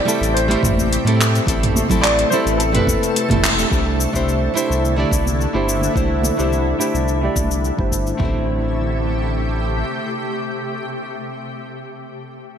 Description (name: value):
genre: sunset chillout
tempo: 107 BPM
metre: 4/4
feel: straight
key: A minor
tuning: A4 = 440 Hz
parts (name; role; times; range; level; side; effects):
- warm grand piano; melody; 0.0-3.4 s; A4 to D5; -22 LUFS; equal; wide subtle chorus, ping-pong delay
- nylon-string guitar; accompaniment; 0.0-11.3 s; G3 to D5; -22 LUFS; right 1 dB; auto-pan, low-pass filter, ping-pong delay
- shimmering ambient pad; sustained chords; 0.0-11.2 s; C3 to A4; -24 LUFS; equal; chorus, built-in reverb
- deep house drum kit; drums; 0.1-8.2 s; cabasa, handclaps, hi-hat, toms; -22 LUFS; left 1 dB; overdrive, gated reverb
- round analog bass; bass; 0.2-9.8 s; E1 to A2; -21 LUFS; equal; tube saturation
- deep house drum kit; drums; 0.6-8.3 s; kick drum, toms; -23 LUFS; equal; overdrive
- congas; percussion; 0.8-7.5 s; none; -27 LUFS; right 3 dB; none
room: moderate plate reverb, RT60 2.3 s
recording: bright 1980s-style digital production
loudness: -16 LUFS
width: side -8 dB against mid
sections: 0.0-3.7 A section; 3.7-8.2 B section; 8.2-10.4 C section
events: band accent 3.4; filter sweep on nylon-string guitar 3.7-8.2; filter sweep on ambient pad 3.7-8.2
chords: 0.0 Am7; 3.7 C69; 8.2 Am7